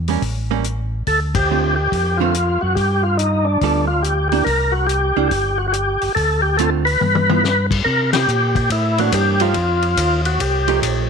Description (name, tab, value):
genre	soul jazz organ trio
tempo	142 BPM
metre	4/4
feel	swing 65% on 8ths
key	unclear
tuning	A4 = 440 Hz
part	mellow tonewheel organ	bass	0.0-11.1 s	G1 to C3	-20 LUFS	equal	overdrive, chorus vibrato, slow rotary speaker
part	archtop guitar, miked and amplified	accompaniment	0.1-11.1 s	D3 to A4	-22 LUFS	right 13 dB	none
part	warm soul drum kit	drums	0.1-11.0 s	crash cymbal, hi-hat, kick drum, ride cymbal, snare drum, toms	-24 LUFS	left 6 dB	none
part	percussive tonewheel organ	melody	1.1-10.8 s	D4 to B4	-18 LUFS	left 1 dB	slow rotary speaker, overdrive, chorus vibrato
room	light reverb, small room ambience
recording	1960s-style stereo with parts hard left and right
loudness	-15 LUFS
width	side -6 dB against mid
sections	0.0-7.9 A section; 7.9-11.1 A section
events	band accent 1.3, 8.1; drum fill 7.0-7.4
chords	0.2 A7b9; 1.1 Dm7; 2.8 G9; 4.5 C7(no3); 6.2 Dm7; 7.0 G6; 7.9 C9; 9.6 F9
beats	0.22 0.65 | 1.07 1.50 1.92 2.35 | 2.77 3.19 3.62 4.04 | 4.47 4.89 5.32 5.74 | 6.16 6.59 7.01 7.43 | 7.86 8.28 8.71 9.13 | 9.55 9.97 10.40 10.82